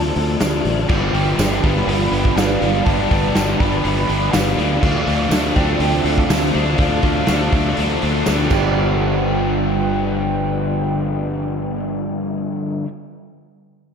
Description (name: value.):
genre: rock, shoegaze and dream pop.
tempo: 122 BPM.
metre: 4/4.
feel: straight.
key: G mixolydian.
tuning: A4 = 442 Hz.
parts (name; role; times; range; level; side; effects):
warm velvety synth lead; melody; 0.0-12.8 s; F5 to B5; -27 LUFS; right 1 dB; chorus, ping-pong delay.
warbly tape-like pad; sustained chords; 0.0-12.8 s; G3 to A5; -27 LUFS; equal; chorus, built-in reverb.
electric guitar through a small old amp; riff; 0.0-12.9 s; G2 to A4; -26 LUFS; right 9 dB; reverse reverb.
raw garage guitar; riff; 0.0-12.9 s; G2 to D4; -23 LUFS; left 7 dB; overdrive, analog chorus.
fingered electric bass; bass; 0.0-12.8 s; G1 to D2; -22 LUFS; equal; none.
raw garage drum kit; drums; 0.2-8.6 s; crash cymbal, hi-hat, kick drum, snare drum; -21 LUFS; equal; none.
tambourine; percussion; 0.4-9.0 s; none; -34 LUFS; right 16 dB; none.
crunchy overdriven guitar; riff; 0.9-12.9 s; G2 to D4; -23 LUFS; right 1 dB; none.
room: moderate lush hall reverb, RT60 1.8 s, small room ambience.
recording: dreamy mix soaked in reverb.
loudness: -16 LUFS.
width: side -6 dB against mid.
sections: 0.0-8.8 A section; 8.8-12.7 B section.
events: none.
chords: 0.0 Dm7; 0.9 G7; 4.8 Dm7; 8.5 G7.